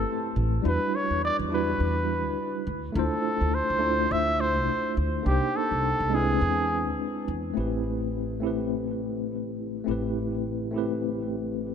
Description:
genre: sunset chillout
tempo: 104 BPM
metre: 4/4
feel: swing 58% on 16ths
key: A minor from 7.6 s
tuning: A4 = 441 Hz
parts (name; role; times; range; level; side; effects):
- trumpet with cup mute; melody; 0.0-7.0 s; G4 to E5; -28 LUFS; equal; tape echo
- tine electric piano; accompaniment; 0.0-11.7 s; G3 to C5; -28 LUFS; left 1 dB; overdrive, fast stereo tremolo, auto-pan, tape echo
- upright bass; bass; 0.0-11.7 s; A1 to E2; -30 LUFS; equal; none
room: moderate lush hall reverb, RT60 2.3 s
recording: none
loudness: -24 LUFS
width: side -7 dB against mid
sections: 0.0-7.6 A section; 7.6-11.7 B section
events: none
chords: 0.0 Am9; 0.6 Em9; 2.7 Dm9; 5.3 Cm9; 6.4 E7b13; 7.6 Am9

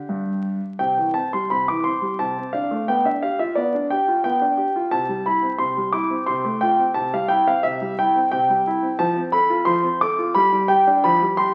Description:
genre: classical-period piano sonatina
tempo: 88 BPM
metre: 3/4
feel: straight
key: C major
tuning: A4 = 436 Hz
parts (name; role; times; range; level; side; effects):
- clear grand piano; solo; 0.0-11.5 s; G2 to D6; -20 LUFS; equal; none
room: wet recital hall reverb, RT60 1.3 s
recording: very old 78 rpm record, vinyl crackle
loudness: -20 LUFS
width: mono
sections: 0.8-11.5 A section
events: none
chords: 0.0 G5; 0.8 C; 2.2 Dm7/C; 2.9 G7/B; 4.9 C; 6.3 F/C; 7.0 C; 9.0 F; 10.4 G

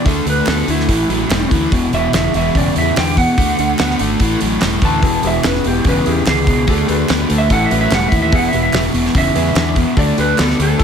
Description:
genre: classic rock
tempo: 145 BPM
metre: 4/4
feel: straight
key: E mixolydian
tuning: A4 = 439 Hz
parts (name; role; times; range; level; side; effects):
- electric slide guitar; melody; 0.0-10.8 s; E4 to A5; -19 LUFS; right 3 dB; slapback echo
- string machine, full ensemble; sustained chords; 0.0-10.8 s; G#3 to A4; -28 LUFS; equal; none
- crunchy overdriven guitar; riff; 0.0-10.8 s; E2 to B3; -17 LUFS; left 1 dB; none
- growling fingered electric bass; bass; 0.1-10.8 s; E1 to E2; -20 LUFS; equal; overdrive
- damped 70s drum kit; drums; 0.1-10.8 s; hi-hat, kick drum, snare drum; -19 LUFS; equal; none
- group handclap; percussion; 0.5-10.5 s; none; -29 LUFS; right 5 dB; none
- bright upright piano; accompaniment; 5.0-10.8 s; B3 to B4; -26 LUFS; left 6 dB; none
room: light reverb, small room ambience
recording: none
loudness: -12 LUFS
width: side -7 dB against mid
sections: 0.0-10.8 A section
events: electric slide guitar solo 0.0-10.8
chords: 0.1 D; 0.9 A; 1.7 E; 3.4 D; 4.2 A; 5.0 E; 6.7 D; 7.5 A; 8.3 E; 10.0 D

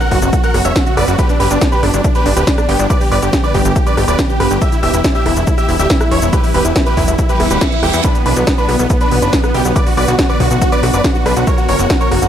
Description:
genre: uplifting trance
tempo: 140 BPM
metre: 4/4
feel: straight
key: B minor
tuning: A4 = 438 Hz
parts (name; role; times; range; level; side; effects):
- supersaw chords; melody; 0.0-12.3 s; B3 to F#5; -18 LUFS; right 1 dB; sidechain pumping, dub echo
- warm concert grand piano; second line; 0.0-12.3 s; B4 to F#6; -22 LUFS; equal; sidechain pumping, dub echo
- shimmering ambient pad; sustained chords; 0.0-12.3 s; C#3 to B3; -21 LUFS; left 1 dB; chorus, built-in reverb, sidechain pumping
- techno drum kit; drums; 0.0-12.3 s; hi-hat, rim click, shaker, snare drum; -20 LUFS; equal; overdrive, sidechain pumping on hats, sidechain pumping on cymbals, sidechain pumping on perc
- plucky analog bass; bass; 0.1-12.3 s; D1 to E2; -16 LUFS; equal; sidechain pumping
- electronic kick drum; drums; 0.1-12.0 s; none; -16 LUFS; equal; none
- reverse cymbal; sound effects; 7.4-8.0 s; none; -23 LUFS; right 6 dB; none
room: light reverb, digital ambience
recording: none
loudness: -11 LUFS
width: side -10 dB against mid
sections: 0.0-12.3 A section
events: reverse cymbal 7.4-8.0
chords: 0.0 F#sus4; 1.2 G; 4.6 Em; 8.0 Bm; 11.5 F#sus4

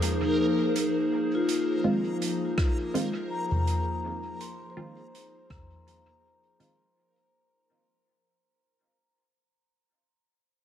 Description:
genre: ambient dub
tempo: 82 BPM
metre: 4/4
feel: swing 57% on 16ths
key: unclear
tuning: A4 = 440 Hz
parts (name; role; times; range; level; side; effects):
- warbly tape-like pad; sustained chords; 0.0-7.0 s; F3 to C5; -31 LUFS; right 1 dB; chorus, built-in reverb, phaser
- soft-mallet drum kit; drums; 0.0-6.8 s; hi-hat, rim click, toms; -31 LUFS; equal; dub echo
- backwards swelling texture; texture; 0.0-7.0 s; Bb4; -37 LUFS; left 1 dB; built-in reverb
- vibraphone with soft mallets; arpeggios; 0.2-8.7 s; Eb4 to C6; -30 LUFS; left 3 dB; dub echo
- filtered dub chord stab; stabs; 1.8-6.9 s; Eb3 to F4; -32 LUFS; right 1 dB; phaser, wide subtle chorus, cassette tape, dub echo
- electronic kick drum; drums; 2.6-5.7 s; none; -27 LUFS; equal; none
room: moderate spring reverb, RT60 2.8 s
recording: vinyl crackle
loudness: -25 LUFS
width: side -10 dB against mid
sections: 0.0-7.0 A section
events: fade-out 0.0-7.0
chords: 0.0 Bb7(no3); 1.1 Fm7

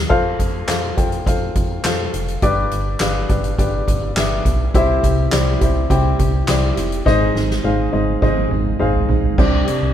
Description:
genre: piano-driven pop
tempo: 104 BPM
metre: 4/4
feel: straight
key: unclear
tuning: A4 = 441 Hz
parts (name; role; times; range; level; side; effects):
- warm upright piano; accompaniment; 0.0-9.9 s; G2 to G5; -20 LUFS; left 3 dB; none
- slap-like FM bass; bass; 0.0-9.9 s; F1 to F2; -21 LUFS; equal; none
- soft-mallet drum kit; drums; 0.1-9.8 s; crash cymbal, handclaps, hi-hat, kick drum, snare drum, toms; -20 LUFS; equal; none
- fingerpicked plugged-in steel-string acoustic guitar; riff; 4.7-9.9 s; Ab2 to Ab4; -24 LUFS; right 5 dB; none
room: moderate studio ambience, RT60 0.5 s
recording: band playing live in one room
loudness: -15 LUFS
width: side -10 dB against mid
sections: 0.1-9.4 A section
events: drum fill 7.1-9.4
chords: 0.1 F; 2.4 G; 4.7 C; 7.1 Ab; 9.4 Csus2

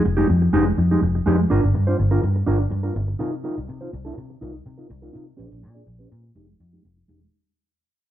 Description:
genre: disco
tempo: 124 BPM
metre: 4/4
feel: straight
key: F dorian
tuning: A4 = 440 Hz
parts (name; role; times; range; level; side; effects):
- mellow electric guitar; accompaniment; 0.0-7.3 s; Ab3 to D5; -23 LUFS; right 1 dB; low-pass filter
- vintage muted fingered electric bass; bass; 0.1-7.3 s; E1 to C3; -20 LUFS; equal; none
room: moderate large studio reverb, RT60 1.0 s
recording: band playing live in one room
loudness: -18 LUFS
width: side -12 dB against mid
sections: 0.0-7.3 A section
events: fade-out 0.0-7.3; filter sweep on clean electric guitar 0.0-7.3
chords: 0.0 Fm9; 1.5 Gm7; 3.2 Cm7; 5.4 Bb9; 6.4 Fm9

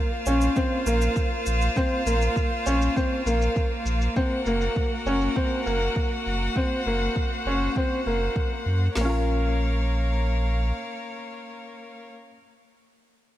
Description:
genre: piano and strings electronica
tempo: 100 BPM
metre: 4/4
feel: straight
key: Bb minor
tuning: A4 = 438 Hz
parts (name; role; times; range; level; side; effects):
- bright string quartet; sustained chords; 0.0-12.1 s; Bb3 to Gb5; -29 LUFS; equal; sidechain pumping
- clear upright piano; riff; 0.0-12.4 s; Bb3 to Bb4; -27 LUFS; equal; digital delay
- warm sub bass; bass; 0.3-10.7 s; Gb1 to Gb2; -24 LUFS; equal; sidechain pumping
- shaker; drums; 0.3-8.9 s; none; -40 LUFS; left 1 dB; low-pass filter on perc, low-pass filter on snare, low-pass filter on toms
- deep house drum kit; drums; 0.6-9.1 s; hi-hat, kick drum, snare drum; -27 LUFS; equal; none
room: light reverb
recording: none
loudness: -22 LUFS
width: side -13 dB against mid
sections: 0.0-9.0 A section; 9.0-11.4 B section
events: none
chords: 0.0 Bbsus2; 4.2 Gb; 9.0 Bbm

